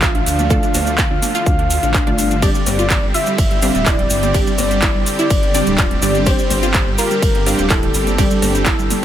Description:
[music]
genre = progressive house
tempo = 125 BPM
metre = 4/4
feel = straight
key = unclear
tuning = A4 = 440 Hz
[part]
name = soft octave-layered synth lead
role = melody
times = 0.0-9.0 s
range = A4 to F5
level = -22 LUFS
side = left 2 dB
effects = chorus, sidechain pumping, dub echo
[part]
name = soft round pluck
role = second line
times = 0.0-9.0 s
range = A4 to F5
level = -30 LUFS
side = right 1 dB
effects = none
[part]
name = supersaw pad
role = sustained chords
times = 0.0-9.0 s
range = D3 to G4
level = -24 LUFS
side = right 2 dB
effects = sidechain pumping
[part]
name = wide unison pluck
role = arpeggios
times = 0.0-9.0 s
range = G3 to A4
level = -23 LUFS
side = moving between left 5 dB and right 9 dB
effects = auto-pan, sidechain pumping, dub echo
[part]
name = wide unison pluck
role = stabs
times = 0.0-9.0 s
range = D3 to F5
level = -22 LUFS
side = equal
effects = sidechain pumping, dub echo
[part]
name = dark detuned saw bass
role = bass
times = 0.0-8.9 s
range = D1 to D2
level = -21 LUFS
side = equal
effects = tube saturation, sidechain pumping
[part]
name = big-room dance drum kit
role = drums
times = 0.0-9.0 s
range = handclaps, hi-hat, ride cymbal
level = -22 LUFS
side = right 1 dB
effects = sidechain pumping on hats, sidechain pumping on cymbals
[part]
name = electronic kick drum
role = drums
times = 0.0-8.8 s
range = none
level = -18 LUFS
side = equal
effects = overdrive
[part]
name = cabasa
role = percussion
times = 0.0-9.0 s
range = none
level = -27 LUFS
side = left 2 dB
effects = none
[part]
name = congas and cowbell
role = percussion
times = 0.4-9.0 s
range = none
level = -29 LUFS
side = left 4 dB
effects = none
[sound]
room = little or no reverb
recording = none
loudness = -13 LUFS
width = side -11 dB against mid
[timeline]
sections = 0.0-9.0 A section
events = none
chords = 0.0 Dm; 2.4 Gsus4

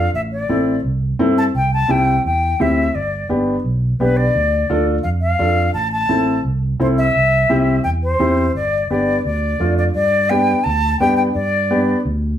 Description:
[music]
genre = latin, cumbia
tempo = 171 BPM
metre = 4/4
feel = straight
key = unclear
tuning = A4 = 443 Hz
[part]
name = silver concert flute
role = melody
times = 0.0-12.0 s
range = B4 to A5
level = -18 LUFS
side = left 1 dB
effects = none
[part]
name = warm upright piano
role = accompaniment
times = 0.0-12.0 s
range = A3 to A4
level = -18 LUFS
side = left 1 dB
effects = none
[part]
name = fingered electric bass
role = bass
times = 0.0-12.3 s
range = G1 to G2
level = -20 LUFS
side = right 1 dB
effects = none
[sound]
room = wet studio reverb, RT60 0.6 s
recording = heard from further back in the room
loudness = -15 LUFS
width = side -10 dB against mid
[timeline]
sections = 0.0-10.0 A section; 10.0-12.4 B section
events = none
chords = 0.1 Am; 1.5 C; 2.9 G; 4.3 Dm; 5.8 Am; 7.2 C; 8.6 G; 9.3 Dm; 10.0 G

